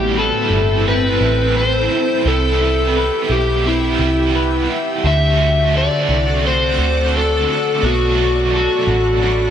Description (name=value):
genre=dream pop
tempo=86 BPM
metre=4/4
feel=straight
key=unclear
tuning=A4 = 437 Hz
part: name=overdriven slide guitar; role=melody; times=0.0-9.5 s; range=E4 to E5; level=-17 LUFS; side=left 2 dB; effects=tape echo
part: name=overdriven electric guitar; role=accompaniment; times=0.0-9.5 s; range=A2 to B4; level=-22 LUFS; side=right 4 dB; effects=tremolo, lush chorus
part: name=shimmering ambient pad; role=sustained chords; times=0.0-9.5 s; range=C4 to B5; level=-24 LUFS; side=right 2 dB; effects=chorus, built-in reverb
part: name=semi-hollow electric guitar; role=arpeggios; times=0.0-9.5 s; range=A2 to B4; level=-23 LUFS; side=left 2 dB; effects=lush chorus, tape echo
part: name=vintage muted picked electric bass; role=bass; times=0.0-9.5 s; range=G1 to D2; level=-19 LUFS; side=right 1 dB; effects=none
room=moderate lush hall reverb, RT60 2.1 s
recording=none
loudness=-14 LUFS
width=side -9 dB against mid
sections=0.0-9.5 A section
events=none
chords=0.0 Am9; 2.3 Cmaj7; 5.0 D7; 7.8 Bm7